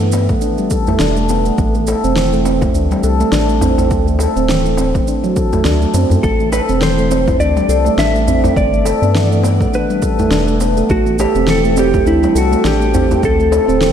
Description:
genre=organic downtempo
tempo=103 BPM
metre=4/4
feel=swing 57% on 16ths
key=A dorian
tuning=A4 = 440 Hz
part: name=handpan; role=arpeggios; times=0.0-13.9 s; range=E3 to A4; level=-15 LUFS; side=right 1 dB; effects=vintage 12-bit sampler grit, ping-pong delay
part: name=round analog bass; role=bass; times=0.0-13.9 s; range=D1 to G2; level=-17 LUFS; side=equal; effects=tube saturation, sidechain pumping
part: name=electronic shaker and snare drum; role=drums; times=0.0-13.9 s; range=none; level=-23 LUFS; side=equal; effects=overdrive, small room ambience
part: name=darbuka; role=percussion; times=0.1-13.7 s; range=none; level=-24 LUFS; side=left 2 dB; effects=none
part: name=electronic kick drum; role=drums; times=0.3-13.4 s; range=none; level=-19 LUFS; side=equal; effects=overdrive, small room ambience
part: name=clean lap steel guitar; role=melody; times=6.2-13.9 s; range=E4 to E5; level=-17 LUFS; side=left 1 dB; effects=wide subtle chorus, tape echo
room=moderate lush hall reverb, RT60 2.5 s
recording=dreamy mix soaked in reverb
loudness=-12 LUFS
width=side -8 dB against mid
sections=0.0-13.9 A section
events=none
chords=0.0 G6; 1.6 Am; 3.9 D7; 6.2 Am; 8.6 G6; 10.9 Am7; 13.2 D5

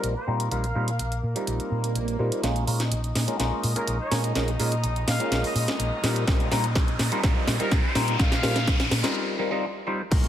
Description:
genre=filtered disco house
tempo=125 BPM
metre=4/4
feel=straight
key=Bb dorian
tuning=A4 = 439 Hz
part: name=clear trumpet section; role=melody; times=0.0-8.9 s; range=Bb4 to F5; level=-35 LUFS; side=left 1 dB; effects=vintage 12-bit sampler grit, sidechain pumping, low-pass filter, dub echo
part: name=overdriven clav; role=accompaniment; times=0.0-10.3 s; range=G3 to Eb5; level=-29 LUFS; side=left 1 dB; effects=phaser, sidechain pumping, low-pass filter
part: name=rich chamber string section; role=sustained chords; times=0.0-10.3 s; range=Bb3 to Eb5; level=-36 LUFS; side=equal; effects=vintage 12-bit sampler grit, sidechain pumping, low-pass filter
part: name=hollow-body short-scale fingered electric bass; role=bass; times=0.0-10.3 s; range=Bb1 to Bb2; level=-27 LUFS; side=equal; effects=sidechain pumping, low-pass filter
part: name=house drum kit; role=drums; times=0.0-10.3 s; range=crash cymbal, hi-hat, snare drum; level=-29 LUFS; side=equal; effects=overdrive, sidechain pumping on hats, sidechain pumping on cymbals
part: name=swell, riser and impact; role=sound effects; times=1.6-10.3 s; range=none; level=-34 LUFS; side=right 1 dB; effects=none
part: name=electronic kick drum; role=drums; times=6.3-10.2 s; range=none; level=-23 LUFS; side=equal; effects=overdrive
room=light reverb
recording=faint mains hum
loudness=-22 LUFS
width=side -10 dB against mid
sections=0.0-2.4 A section; 2.4-10.1 B section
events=filter sweep 0.0-2.4, 2.4-10.1; swell 1.6-2.4; build-up 2.4-10.1; drum fill 2.4-9.2; riser 2.4-9.2; break 9.2-10.1; impact 10.1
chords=0.0 F9sus4/Bb; 2.4 Bbm7; 6.0 F9sus4/Bb

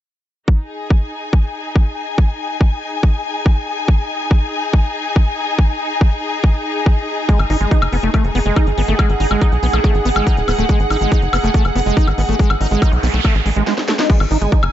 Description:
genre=psychedelic trance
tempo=141 BPM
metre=4/4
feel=straight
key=unclear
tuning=A4 = 441 Hz
part: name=electronic kick drum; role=drums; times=0.5-14.6 s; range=none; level=-13 LUFS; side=equal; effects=overdrive
part: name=clear symphonic string section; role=texture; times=0.5-14.7 s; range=D#4 to G#5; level=-23 LUFS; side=left 2 dB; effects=sidechain pumping
part: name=evolving wavetable pad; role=sustained chords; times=8.3-14.7 s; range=G#4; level=-25 LUFS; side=right 3 dB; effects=phaser, built-in reverb, vintage 12-bit sampler grit, sidechain pumping
part: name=liquid acid bass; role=riff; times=7.3-14.6 s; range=G#3 to D#4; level=-21 LUFS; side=moving between left 3 dB and right 4 dB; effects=chorus, auto-pan, sidechain pumping, tape echo
part: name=drum and bass drum kit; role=drums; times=7.3-14.7 s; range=crash cymbal, hi-hat, snare drum, woodblock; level=-23 LUFS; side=left 2 dB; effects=low-pass filter on hats, low-pass filter on perc, low-pass filter on snare, low-pass filter on cymbals
part: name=tight sequencer bass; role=bass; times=7.4-14.7 s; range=D#1 to B1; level=-18 LUFS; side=equal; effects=none
part: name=noise sweep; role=sound effects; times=12.6-14.1 s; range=none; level=-26 LUFS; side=right 4 dB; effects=none
room=light reverb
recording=nothing above 7.8 kHz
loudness=-14 LUFS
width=side -12 dB against mid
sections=0.5-14.1 A section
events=noise sweep 12.6-14.1; drum fill 13.7-14.1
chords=0.5 G#5

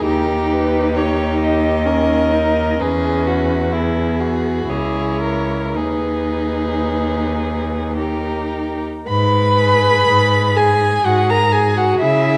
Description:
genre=classical, slow romantic movement for string quartet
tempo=52-68 BPM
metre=3/4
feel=rubato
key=G# minor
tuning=A4 = 442 Hz
part: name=rich violin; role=melody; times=0.0-12.4 s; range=G#4 to B5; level=-22 LUFS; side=equal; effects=none
part: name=rich violin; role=second line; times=0.0-12.4 s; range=E4 to A#4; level=-26 LUFS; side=equal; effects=none
part: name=rich viola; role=accompaniment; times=0.0-12.4 s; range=B3 to B4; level=-23 LUFS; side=equal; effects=none
part: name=clear cello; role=bass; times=0.0-12.4 s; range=C#2 to C#3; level=-22 LUFS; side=equal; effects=none
room=moderate concert hall reverb, RT60 1.7 s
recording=dark, warm production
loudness=-17 LUFS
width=mono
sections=0.0-9.1 A section; 9.1-12.4 B section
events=none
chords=0.1 D#7; 2.8 E; 4.7 A#m7b5/C#; 5.8 G#m/D#; 9.1 G#m

